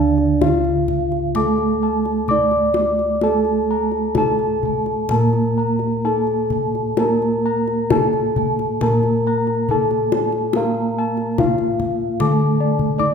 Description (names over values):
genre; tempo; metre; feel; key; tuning
Javanese gamelan; 64-77 BPM; 4/4; straight; unclear; A4 = 440 Hz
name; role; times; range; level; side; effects
gamelan-type bronze metallophone; melody; 0.0-13.1 s; D4 to D5; -20 LUFS; left 1 dB; none
gamelan-type bronze metallophone; accompaniment; 0.0-13.1 s; D3 to Bb3-20c; -23 LUFS; right 4 dB; none
gamelan-type bossed gongs; arpeggios; 0.0-13.1 s; D5 to D6; -26 LUFS; left 4 dB; none
gamelan-type bronze metallophone; arpeggios; 0.0-13.1 s; D5 to D6; -28 LUFS; right 4 dB; none
gamelan-type bossed gongs; bass; 0.0-13.1 s; D2 to Bb4-20c; -24 LUFS; left 1 dB; none
kendang; percussion; 0.2-13.1 s; none; -24 LUFS; left 4 dB; none
room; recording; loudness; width
moderate concert hall reverb, RT60 1.8 s; minimal, uncompressed stereo recording; -16 LUFS; side -6 dB against mid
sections
0.0-13.1 A section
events
drum fill 12.8-13.1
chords
none